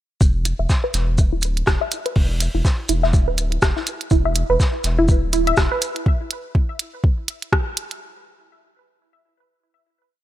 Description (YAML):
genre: minimal techno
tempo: 123 BPM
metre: 4/4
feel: swing 58% on 16ths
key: unclear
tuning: A4 = 445 Hz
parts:
  - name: round analog bass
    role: bass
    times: 0.2-5.7 s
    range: D1 to E1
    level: -21 LUFS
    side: equal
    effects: sidechain pumping
  - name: electronic kick drum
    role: drums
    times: 0.2-7.6 s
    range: none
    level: -17 LUFS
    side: equal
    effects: none
  - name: loose indie drum kit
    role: drums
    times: 0.2-6.0 s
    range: hi-hat, shaker, snare drum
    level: -30 LUFS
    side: equal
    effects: high-pass filter on hats, high-pass filter on snare, high-pass filter on perc, high-pass filter on room
  - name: resonant blip pluck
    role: riff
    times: 0.5-5.7 s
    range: E4 to E5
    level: -23 LUFS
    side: equal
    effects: phaser, sidechain pumping, tape echo
  - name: minimal click drum kit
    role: drums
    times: 0.5-8.0 s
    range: hi-hat, rim click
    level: -23 LUFS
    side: right 1 dB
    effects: none
room: small room reverb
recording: none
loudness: -17 LUFS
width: side -13 dB against mid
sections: 0.2-8.0 groove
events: filter sweep on synth pluck 0.2-6.1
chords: 0.2 E5